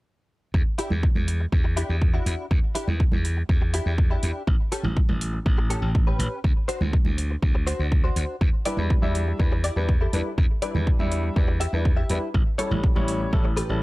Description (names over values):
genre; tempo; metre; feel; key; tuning
nu-disco, nu disco; 122 BPM; 4/4; straight; E minor; A4 = 440 Hz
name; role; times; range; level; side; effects
glassy slap bass; bass; 0.5-13.8 s; A1 to E2; -25 LUFS; equal; none
electronic kick drum; drums; 0.5-13.4 s; none; -22 LUFS; equal; studio reverb
direct-recorded clean electric guitar; riff; 0.8-13.8 s; C#4 to E5; -31 LUFS; left 1 dB; ensemble chorus
electronic hi-hat; drums; 0.8-13.7 s; none; -34 LUFS; right 1 dB; studio reverb
congas; percussion; 0.9-13.1 s; none; -32 LUFS; right 3 dB; none
warm baby grand piano; accompaniment; 8.7-13.8 s; G3 to E5; -29 LUFS; left 2 dB; sidechain pumping, digital delay
room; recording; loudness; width
little or no reverb; dark, warm production; -21 LUFS; side -20 dB against mid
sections
0.5-13.8 A section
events
none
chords
0.5 Em7; 4.5 A7; 6.4 D7; 8.4 Em7; 12.3 A7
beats
| 0.54 1.03 1.53 2.02 | 2.51 3.00 3.49 3.98 | 4.48 4.97 5.46 5.95 | 6.44 6.93 7.43 7.92 | 8.41 8.90 9.39 9.89 | 10.38 10.87 11.36 11.85 | 12.35 12.84 13.33 13.82